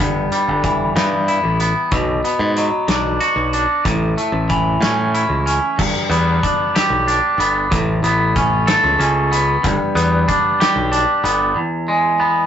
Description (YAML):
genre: quiet-loud alternative rock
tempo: 62 BPM (dotted quarters)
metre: 6/8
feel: straight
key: A major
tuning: A4 = 441 Hz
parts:
  - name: twangy electric guitar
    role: arpeggios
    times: 0.0-12.5 s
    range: E2 to A4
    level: -16 LUFS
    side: equal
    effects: none
  - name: modern bright picked electric bass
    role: bass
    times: 0.0-11.5 s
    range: G1 to A2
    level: -20 LUFS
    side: equal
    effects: none
  - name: loose indie drum kit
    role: drums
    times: 0.0-11.4 s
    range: crash cymbal, hi-hat, kick drum, snare drum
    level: -22 LUFS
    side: equal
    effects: none
room: light reverb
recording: rough rehearsal-room recording, warm saturation, nothing above 7.9 kHz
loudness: -14 LUFS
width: side -9 dB against mid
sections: 0.0-5.8 A section; 5.8-12.5 B section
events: none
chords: 0.0 G6; 1.9 Bm; 3.9 A; 5.8 G; 7.7 Aadd9; 9.6 G; 11.6 E